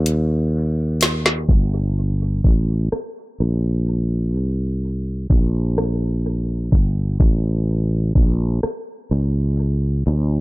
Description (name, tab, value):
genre	slow six-eight R&B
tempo	42 BPM (dotted quarters)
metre	6/8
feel	straight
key	G minor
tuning	A4 = 440 Hz
part	sustaining fretless electric bass	bass	0.0-10.4 s	G1 to Eb2	-19 LUFS	equal	none
part	smooth R&B drum kit	drums	0.1-10.3 s	hi-hat, kick drum, rim click, snare drum	-17 LUFS	equal	none
room	little or no reverb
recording	echo-heavy mix, low-pass filter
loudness	-17 LUFS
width	side -21 dB against mid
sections	0.0-1.5 A section; 1.5-10.4 B section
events	drum fill 0.0-1.5; filter sweep 1.5-10.4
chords	none